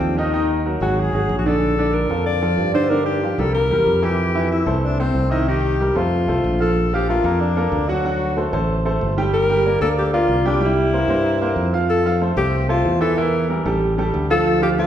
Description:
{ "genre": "Afro-Cuban jazz", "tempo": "187 BPM", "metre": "4/4", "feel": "straight", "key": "F major", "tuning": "A4 = 441 Hz", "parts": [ { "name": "warm alto saxophone", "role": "melody", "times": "0.0-14.9 s", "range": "C4 to D5", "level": "-20 LUFS", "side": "left 2 dB", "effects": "none" }, { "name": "bright grand piano", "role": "accompaniment", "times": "0.0-14.9 s", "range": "D3 to G5", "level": "-21 LUFS", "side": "right 2 dB", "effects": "none" }, { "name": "modern bright fingered electric bass", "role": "bass", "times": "0.0-14.9 s", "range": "G1 to G2", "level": "-21 LUFS", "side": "equal", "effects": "none" } ], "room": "wet recital hall reverb, RT60 1.6 s", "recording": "recorded in a church or concert hall", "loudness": "-16 LUFS", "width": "side -10 dB against mid", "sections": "0.0-6.8 A section; 6.8-14.9 B section", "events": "none", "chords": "0.3 Ebm; 1.0 Absus2; 1.6 Bbmaj7; 2.9 Gm7; 3.5 C7; 4.2 Fmaj9; 5.5 Cm7; 6.1 F; 6.8 Bbmaj7; 8.0 D7; 9.3 Gm7; 10.6 C7; 11.9 F; 13.2 Edim; 13.8 Dmadd11/A" }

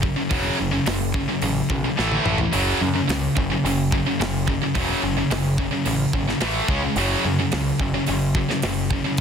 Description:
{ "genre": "heavy metal", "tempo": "108 BPM", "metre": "4/4", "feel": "straight", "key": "F# minor", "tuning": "A4 = 440 Hz", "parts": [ { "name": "heavy high-gain guitar", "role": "riff", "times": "0.0-9.2 s", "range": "F#2 to C#4", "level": "-24 LUFS", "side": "left 7 dB", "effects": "distortion" }, { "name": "tight distorted guitar", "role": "riff", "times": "0.0-9.2 s", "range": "F#2 to C#4", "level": "-25 LUFS", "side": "right 15 dB", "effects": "distortion" }, { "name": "growling picked electric bass", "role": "bass", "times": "0.0-9.2 s", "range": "E1 to F#2", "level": "-26 LUFS", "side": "equal", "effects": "overdrive" }, { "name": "tight metal drum kit", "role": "drums", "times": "0.0-9.2 s", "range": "hi-hat, kick drum, snare drum, toms", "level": "-27 LUFS", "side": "equal", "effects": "none" } ], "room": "little or no reverb", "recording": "dense, heavily limited modern master", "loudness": "-19 LUFS", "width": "side -7 dB against mid", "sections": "0.0-9.2 A section", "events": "drum fill 2.0-2.5", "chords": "0.0 F#5; 2.0 A5; 2.5 F#5; 6.4 A5; 6.7 C#5; 7.0 F#5" }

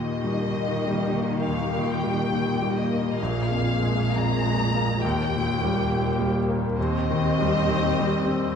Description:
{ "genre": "classical, romantic movement for piano and orchestra", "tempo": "61-70 BPM", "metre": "4/4", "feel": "rubato", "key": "Eb major", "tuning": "A4 = 441 Hz", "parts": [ { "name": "clear baby grand piano", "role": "melody", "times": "0.0-8.6 s", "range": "Bb1 to C4", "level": "-25 LUFS", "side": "left 2 dB", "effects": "none" }, { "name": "rich chamber violin section", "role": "melody", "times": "0.0-8.5 s", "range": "Eb5 to Bb5", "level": "-30 LUFS", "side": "left 3 dB", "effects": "none" }, { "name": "rich chamber viola section", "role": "accompaniment", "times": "0.0-8.5 s", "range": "Bb3 to Ab4", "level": "-30 LUFS", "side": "right 2 dB", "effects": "none" }, { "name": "warm chamber cello section", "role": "bass", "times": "0.0-8.5 s", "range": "Eb2 to Eb3", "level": "-29 LUFS", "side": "right 3 dB", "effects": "none" } ], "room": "wet scoring stage reverb, RT60 1.7 s", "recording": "heard from further back in the room", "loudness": "-22 LUFS", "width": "side -7 dB against mid", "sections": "0.0-8.6 A section", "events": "none", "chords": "0.0 Eb; 3.2 Bb5; 5.0 Eb; 6.8 Cm/Eb" }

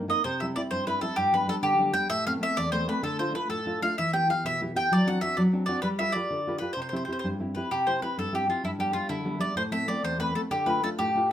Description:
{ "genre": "italian folk, Italian serenade", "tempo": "128 BPM (dotted quarters)", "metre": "6/8", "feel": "rubato", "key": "C major", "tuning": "A4 = 440 Hz", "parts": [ { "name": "nylon-string guitar", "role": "accompaniment", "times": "0.0-11.3 s", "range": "E2 to B4", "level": "-29 LUFS", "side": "equal", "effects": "none" }, { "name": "mandolin", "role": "melody", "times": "0.1-11.3 s", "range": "E4 to G5", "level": "-26 LUFS", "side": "equal", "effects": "none" } ], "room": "moderate studio reverb, RT60 0.6 s", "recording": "minimal, uncompressed stereo recording", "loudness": "-25 LUFS", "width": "side -10 dB against mid", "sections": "0.2-7.7 A section; 7.7-11.3 A section", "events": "none", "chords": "0.2 C; 1.2 G; 2.1 Amadd9; 3.0 Dm; 4.0 Em; 4.9 D7/F#; 5.8 G7; 6.8 C; 8.6 G; 9.6 Amadd9; 10.5 Dm" }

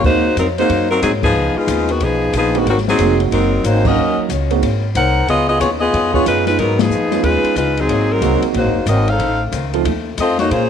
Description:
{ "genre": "jazz, big band swing", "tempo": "184 BPM", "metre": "4/4", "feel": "swing 64% on 8ths", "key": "Ab mixolydian", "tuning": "A4 = 440 Hz", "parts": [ { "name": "warm saxophone section", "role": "melody", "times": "0.0-10.7 s", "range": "Eb3 to Gb5", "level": "-16 LUFS", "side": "left 2 dB", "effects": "none" }, { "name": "picked old ladder-braced acoustic guitar", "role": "accompaniment", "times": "0.0-10.7 s", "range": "F2 to Gb4", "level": "-27 LUFS", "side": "left 11 dB", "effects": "none" }, { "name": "warm grand piano", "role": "accompaniment", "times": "0.0-9.8 s", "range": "F3 to F5", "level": "-20 LUFS", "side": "right 15 dB", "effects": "none" }, { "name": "upright bass", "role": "bass", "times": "0.0-10.7 s", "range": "F1 to Bb2", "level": "-20 LUFS", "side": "equal", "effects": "none" }, { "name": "open jazz drum kit", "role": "drums", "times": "0.0-10.6 s", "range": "crash cymbal, hi-hat, kick drum, ride cymbal, snare drum", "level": "-25 LUFS", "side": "left 4 dB", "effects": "none" } ], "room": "moderate plate reverb, RT60 1.6 s", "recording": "1960s-style stereo with parts hard left and right", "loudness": "-13 LUFS", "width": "side -8 dB against mid", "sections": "0.0-10.7 A section", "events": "band accent 1.2, 3.8, 6.7", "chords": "0.0 Ab9; 1.4 Db9; 2.7 Ab9; 4.0 Ebm7; 4.6 Ab9; 5.3 Db9; 7.9 Ab9; 9.2 F7" }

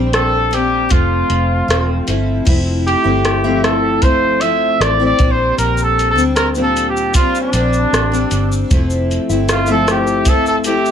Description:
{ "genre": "indie pop, bedroom pop", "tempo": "77 BPM", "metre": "4/4", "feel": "straight", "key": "F major", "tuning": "A4 = 438 Hz", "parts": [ { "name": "picked steel-string acoustic guitar", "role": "accompaniment", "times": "0.0-10.9 s", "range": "Bb2 to E4", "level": "-18 LUFS", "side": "left 3 dB", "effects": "analog chorus, vibrato effect" }, { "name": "vintage muted fingered electric bass", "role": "bass", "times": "0.0-10.9 s", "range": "E1 to D2", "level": "-19 LUFS", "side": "right 1 dB", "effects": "none" }, { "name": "clear trumpet", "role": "melody", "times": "0.1-10.9 s", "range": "D4 to E5", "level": "-16 LUFS", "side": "right 1 dB", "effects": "lush chorus, analog delay" }, { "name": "soft vintage rhythm box", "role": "drums", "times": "0.1-10.9 s", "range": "crash cymbal, hi-hat, kick drum, rim click, shaker", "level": "-17 LUFS", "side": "equal", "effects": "none" } ], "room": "light reverb", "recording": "none", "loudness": "-12 LUFS", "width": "side -8 dB against mid", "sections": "0.0-2.5 A section; 2.5-10.9 B section", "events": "trumpet solo 2.5-10.9", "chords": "0.0 Bb69; 0.9 Fmaj7; 5.2 Bb69; 8.7 Fmaj7" }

